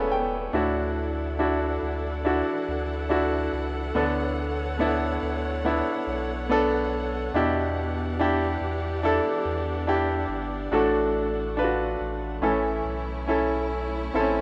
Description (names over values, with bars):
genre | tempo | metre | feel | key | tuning
pop ballad | 70 BPM | 4/4 | straight | D major | A4 = 440 Hz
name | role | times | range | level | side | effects
bright concert grand piano | accompaniment | 0.0-14.4 s | A2 to G5 | -27 LUFS | equal | plate reverb
clear studio string section | sustained chords | 0.0-14.4 s | C#3 to F#5 | -34 LUFS | equal | none
warm sub bass | bass | 0.0-14.4 s | E1 to E2 | -34 LUFS | equal | none
room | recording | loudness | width
light reverb | rough home demo mix | -26 LUFS | mono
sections
0.5-14.4 A section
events
grand piano fill 0.0-0.5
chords
0.0 Aadd9; 0.5 Dadd9; 4.0 Bm7/D; 7.3 Em7; 10.7 D/A; 12.4 A